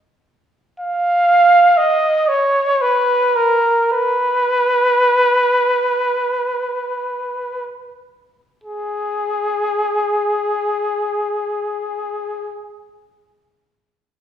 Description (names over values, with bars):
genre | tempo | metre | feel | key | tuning
classical, free, expressive piece for unaccompanied trumpet | 16-42 BPM (dotted quarters) | 6/8 | rubato | G# dorian | A4 = 440 Hz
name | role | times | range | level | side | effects
warm trumpet | solo | 0.8-12.6 s | G#4 to E#5 | -15 LUFS | equal | none
room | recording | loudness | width
wet recital hall reverb, RT60 1.4 s | heard from further back in the room | -15 LUFS | side -9 dB against mid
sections
0.0-8.7 A section; 8.7-13.2 B section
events
slowing down 0.0-8.7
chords
none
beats
| 0.80 2.29 | 3.93 5.83 | 8.65 10.98